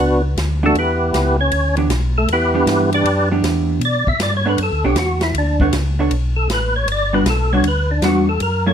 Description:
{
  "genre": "soul jazz organ trio",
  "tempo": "157 BPM",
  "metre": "4/4",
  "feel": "swing 66% on 8ths",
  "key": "B minor",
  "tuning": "A4 = 440 Hz",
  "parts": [
    { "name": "percussive tonewheel organ", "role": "melody", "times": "0.0-8.7 s", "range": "A3 to E5", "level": "-18 LUFS", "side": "equal", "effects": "slow rotary speaker, chorus vibrato, plate reverb" },
    { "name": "mellow tonewheel organ", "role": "bass", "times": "0.0-8.7 s", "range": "G1 to B2", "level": "-19 LUFS", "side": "equal", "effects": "slow rotary speaker" },
    { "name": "swinging big-band drum kit", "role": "drums", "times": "0.4-8.5 s", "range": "hi-hat, kick drum, ride cymbal, snare drum", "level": "-26 LUFS", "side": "equal", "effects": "none" },
    { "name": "vintage hollow-body jazz guitar", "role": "accompaniment", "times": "0.6-8.7 s", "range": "E3 to C#5", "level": "-19 LUFS", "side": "right 2 dB", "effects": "none" }
  ],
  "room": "moderate club reverb, RT60 0.6 s",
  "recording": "none",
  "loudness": "-15 LUFS",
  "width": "side -8 dB against mid",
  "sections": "0.0-8.7 A section",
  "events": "tonewheel organ solo 0.0-8.7",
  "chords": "0.0 Bm9; 0.8 Em7; 3.8 Bm9; 6.9 Gmaj7",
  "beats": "0.37 | 0.75 1.14 1.52 1.90 | 2.29 2.67 3.05 3.44 | 3.82 4.20 4.58 4.97 | 5.35 5.73 6.11 6.50 | 6.88 7.26 7.64 8.03 | 8.41"
}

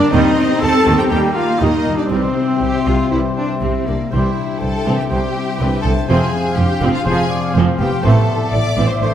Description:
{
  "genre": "cinematic",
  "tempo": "122 BPM",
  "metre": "4/4",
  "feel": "straight",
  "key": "C major from 4.1 s",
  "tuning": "A4 = 440 Hz",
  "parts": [
    { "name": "warm studio violin section", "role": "melody", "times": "0.0-9.1 s", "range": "C5 to D6", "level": "-29 LUFS", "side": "left 4 dB", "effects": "none" },
    { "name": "dark clarinet", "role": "second line", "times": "0.0-9.1 s", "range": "A3 to A4", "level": "-26 LUFS", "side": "left 3 dB", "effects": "none" },
    { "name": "mellow cor anglais", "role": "second line", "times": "0.0-9.1 s", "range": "C4 to D5", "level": "-28 LUFS", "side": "right 2 dB", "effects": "none" },
    { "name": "warm symphonic violin section", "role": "second line", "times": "0.0-9.1 s", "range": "D4 to A5", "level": "-25 LUFS", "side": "left 2 dB", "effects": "none" },
    { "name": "warm symphonic viola section", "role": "accompaniment", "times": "0.0-9.1 s", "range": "C3 to C4", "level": "-24 LUFS", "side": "right 2 dB", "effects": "none" },
    { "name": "warm French horn section", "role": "sustained chords", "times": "0.0-9.1 s", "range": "C4 to A4", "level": "-22 LUFS", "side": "left 4 dB", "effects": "none" },
    { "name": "concert harp", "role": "arpeggios", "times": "0.0-9.1 s", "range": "F2 to D6", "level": "-23 LUFS", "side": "left 6 dB", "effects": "none" },
    { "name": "dark trumpet section", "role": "stabs", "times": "0.0-9.1 s", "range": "C4 to C5", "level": "-24 LUFS", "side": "right 2 dB", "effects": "none" },
    { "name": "rich symphonic cello section", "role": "bass", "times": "0.0-9.1 s", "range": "C2 to G4", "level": "-21 LUFS", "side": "right 2 dB", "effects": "none" },
    { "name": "clear trombone section", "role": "sustained chords", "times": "0.1-9.1 s", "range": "C3 to A3", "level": "-27 LUFS", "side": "right 3 dB", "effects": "none" },
    { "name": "dark symphonic double bass section", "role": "bass", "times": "0.1-9.1 s", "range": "F1 to Eb2", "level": "-19 LUFS", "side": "right 3 dB", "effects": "none" },
    { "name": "mellow silver concert flute", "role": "second line", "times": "4.1-9.1 s", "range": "E5 to G5", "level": "-26 LUFS", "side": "left 1 dB", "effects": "none" }
  ],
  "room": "wet scoring stage reverb, RT60 1.6 s",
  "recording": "none",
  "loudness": "-14 LUFS",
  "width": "side -10 dB against mid",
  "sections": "0.0-4.1 A section; 4.1-9.1 B section",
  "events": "none",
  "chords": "0.1 Eb; 2.1 C; 6.1 Fm; 8.0 Am",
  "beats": "| 0.12 0.61 1.11 1.60 | 2.11 2.61 3.12 3.62 | 4.12 4.61 5.11 5.60 | 6.09 6.58 7.06 7.55 | 8.03 8.52 9.00"
}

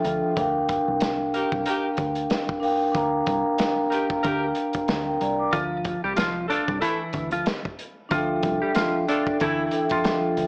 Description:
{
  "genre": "hip hop, boom-bap hip-hop",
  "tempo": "93 BPM",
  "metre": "4/4",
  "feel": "swing 57% on 16ths",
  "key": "D minor",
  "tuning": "A4 = 440 Hz",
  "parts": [
    { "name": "semi-hollow electric guitar", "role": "melody", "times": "0.0-0.3, 5.5-10.5 s", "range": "E3 to D5", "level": "-26 LUFS", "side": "equal", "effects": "high-pass filter, low-pass filter, digital delay" },
    { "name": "vibraphone with soft mallets", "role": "accompaniment", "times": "0.0-10.5 s", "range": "D4 to D6", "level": "-23 LUFS", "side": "equal", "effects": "cassette tape, high-pass filter, low-pass filter" },
    { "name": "crunchy breakbeat drum kit", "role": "drums", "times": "0.0-10.5 s", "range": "hi-hat, kick drum, snare drum", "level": "-29 LUFS", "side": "equal", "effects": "none" },
    { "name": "deep dub fingered electric bass", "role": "bass", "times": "0.1-10.5 s", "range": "C2 to D2", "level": "-33 LUFS", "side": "equal", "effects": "none" },
    { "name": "warm saxophone section", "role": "stabs", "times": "1.3-9.6 s", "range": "A3 to Bb4", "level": "-29 LUFS", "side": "equal", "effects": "high-pass filter, low-pass filter, digital delay" }
  ],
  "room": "light reverb, small room ambience",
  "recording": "worn, warbling old tape, cassette tape, warbly pitch drift, small speaker sound",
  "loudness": "-21 LUFS",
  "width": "side -37 dB against mid",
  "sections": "0.0-10.5 A section",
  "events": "break 5.5-8.1",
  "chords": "0.4 Ebmaj7; 5.5 Dmadd9",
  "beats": "| 0.37 1.01 1.66 2.30 | 2.95 3.59 4.24 4.88 | 5.53 6.17 6.82 7.46 | 8.11 8.75 9.40 10.04"
}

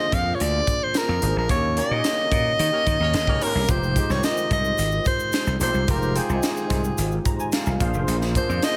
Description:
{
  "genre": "polished 1980s jazz-funk pop",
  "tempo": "109 BPM",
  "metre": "4/4",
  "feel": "straight",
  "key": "F minor",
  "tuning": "A4 = 440 Hz",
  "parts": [
    { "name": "clear soprano saxophone", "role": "melody", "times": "0.0-8.8 s", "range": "Ab4 to F5", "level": "-26 LUFS", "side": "equal", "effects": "none" },
    { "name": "barky tine electric piano", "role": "accompaniment", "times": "0.0-8.8 s", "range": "Ab3 to Bb5", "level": "-30 LUFS", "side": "equal", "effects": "overdrive, ensemble chorus" },
    { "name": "slap bass", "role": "bass", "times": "0.1-8.6 s", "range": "F1 to Eb3", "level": "-27 LUFS", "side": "equal", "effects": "none" },
    { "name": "crisp fusion drum kit", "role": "drums", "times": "0.1-8.8 s", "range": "hi-hat, kick drum, snare drum", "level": "-28 LUFS", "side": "equal", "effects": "none" },
    { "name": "warm horn section", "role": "second line", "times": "2.7-3.6 s", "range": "Bb3 to Db5", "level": "-35 LUFS", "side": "equal", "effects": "none" },
    { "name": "tube shaker", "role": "percussion", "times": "3.7-8.8 s", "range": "none", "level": "-42 LUFS", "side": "equal", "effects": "none" }
  ],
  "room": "light reverb, studio reverb",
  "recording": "none",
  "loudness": "-22 LUFS",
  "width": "mono",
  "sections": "0.0-8.8 A section",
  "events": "band accent 1.5-3.7; tine electric piano fill 7.0-8.1",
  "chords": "0.0 Bb9; 1.5 Eb7; 3.7 Fm9; 7.8 Bb9",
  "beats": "0.40 0.95 | 1.50 2.04 2.59 3.14 | 3.69 4.24 4.79 5.33 | 5.88 6.43 6.98 7.53 | 8.08 8.63"
}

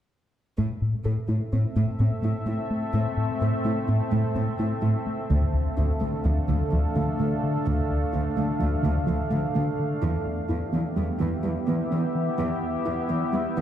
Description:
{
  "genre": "cinematic, hybrid orchestral and electronic film score",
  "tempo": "127 BPM",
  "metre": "5/4",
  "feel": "straight",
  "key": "A minor",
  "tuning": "A4 = 440 Hz",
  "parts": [
    { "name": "deep dark ambient pad", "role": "sustained chords", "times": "1.4-13.6 s", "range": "A3 to F5", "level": "-29 LUFS", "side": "equal", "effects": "chorus, built-in reverb" },
    { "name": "soft round pluck", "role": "arpeggios", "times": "0.6-13.6 s", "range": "D3 to A4", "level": "-32 LUFS", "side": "right 2 dB", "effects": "chorus, tape echo" },
    { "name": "round analog bass", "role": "riff", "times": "0.6-13.6 s", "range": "D2 to A3", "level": "-27 LUFS", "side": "left 1 dB", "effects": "none" },
    { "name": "rich symphonic cello section", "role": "bass", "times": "0.6-13.6 s", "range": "D2 to A2", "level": "-30 LUFS", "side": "right 2 dB", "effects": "none" }
  ],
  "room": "wet recital hall reverb, RT60 1.5 s",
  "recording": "heard from further back in the room, high-pass filter",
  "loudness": "-23 LUFS",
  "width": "side -10 dB against mid",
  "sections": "0.6-13.6 A section",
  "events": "build-up 0.6-13.6",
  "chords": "0.6 Am; 5.3 Dm; 10.0 Em",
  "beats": "| 0.58 1.05 1.52 1.99 2.47 | 2.94 3.41 3.88 4.36 4.83 | 5.30 5.77 6.25 6.72 7.19 | 7.66 8.14 8.61 9.08 9.55 | 10.03 10.50 10.97 11.44 11.91 | 12.39 12.86 13.33"
}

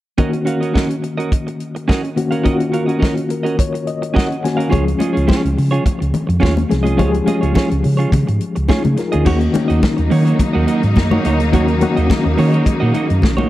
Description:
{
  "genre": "disco",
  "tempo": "106 BPM",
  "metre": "4/4",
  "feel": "straight",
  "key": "Eb minor",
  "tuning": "A4 = 440 Hz",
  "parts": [
    { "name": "clean electric guitar", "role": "accompaniment", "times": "0.2-13.5 s", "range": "Bb3 to F5", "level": "-21 LUFS", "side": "right 4 dB", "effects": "spring reverb" },
    { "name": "reed electric piano", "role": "accompaniment", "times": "0.2-13.5 s", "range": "Eb3 to Ab5", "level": "-19 LUFS", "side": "left 3 dB", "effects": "tube saturation, tremolo" },
    { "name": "warm soul drum kit", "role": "drums", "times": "0.2-13.4 s", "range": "crash cymbal, hi-hat, kick drum, snare drum", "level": "-18 LUFS", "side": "equal", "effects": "none" },
    { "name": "hollow-body short-scale fingered electric bass", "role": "bass", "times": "4.7-13.4 s", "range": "Bb1 to Eb3", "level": "-17 LUFS", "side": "equal", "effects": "none" },
    { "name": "congas", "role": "percussion", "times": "4.7-13.5 s", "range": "none", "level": "-24 LUFS", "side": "left 4 dB", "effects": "none" },
    { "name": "clear symphonic string section", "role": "sustained chords", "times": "9.3-13.5 s", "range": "Db3 to Eb4", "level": "-22 LUFS", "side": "equal", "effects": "none" }
  ],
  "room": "small room ambience",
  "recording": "none",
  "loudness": "-14 LUFS",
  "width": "side -15 dB against mid",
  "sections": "0.2-9.3 A section; 9.3-13.5 B section",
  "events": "reed electric piano fill 3.0-4.7",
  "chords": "0.2 Ebm7; 4.7 Db; 9.3 Ebm7",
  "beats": "| 0.19 0.75 1.32 1.89 | 2.46 3.02 3.59 4.16 | 4.73 5.29 5.86 6.43 | 7.00 7.56 8.13 8.70 | 9.26 9.83 10.40 10.96 | 11.53 12.10 12.66 13.23"
}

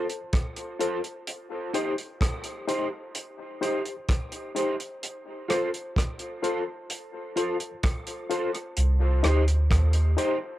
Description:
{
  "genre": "dub reggae",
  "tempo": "64 BPM",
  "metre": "4/4",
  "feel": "straight",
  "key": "C dorian",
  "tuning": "A4 = 444 Hz",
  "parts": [
    { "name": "electric guitar at the edge of break-up", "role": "accompaniment", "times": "0.0-10.4 s", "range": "Eb4 to C5", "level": "-33 LUFS", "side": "right 5 dB", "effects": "ensemble chorus, cassette tape, dub echo" },
    { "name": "barky reed electric piano", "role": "stabs", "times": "0.0-10.4 s", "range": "Eb4 to C5", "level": "-31 LUFS", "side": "left 5 dB", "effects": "overdrive, fast tremolo, cassette tape, dub echo" },
    { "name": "damped 70s drum kit", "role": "drums", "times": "0.1-10.4 s", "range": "hi-hat, kick drum, rim click", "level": "-28 LUFS", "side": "equal", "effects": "cassette tape" },
    { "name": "soft dub sub bass", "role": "bass", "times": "8.8-10.2 s", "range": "C2 to Eb2", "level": "-21 LUFS", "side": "equal", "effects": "transformer saturation" }
  ],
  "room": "light reverb, small room ambience",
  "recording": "home recording on cassette",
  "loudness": "-25 LUFS",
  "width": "side -15 dB against mid",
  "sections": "0.0-8.8 A section; 8.8-10.6 B section",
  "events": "none",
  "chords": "0.0 F; 1.3 Cm; 5.0 F; 8.8 Cm",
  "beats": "0.33 | 1.27 2.21 3.15 4.09 | 5.03 5.96 6.90 7.84 | 8.77 9.71"
}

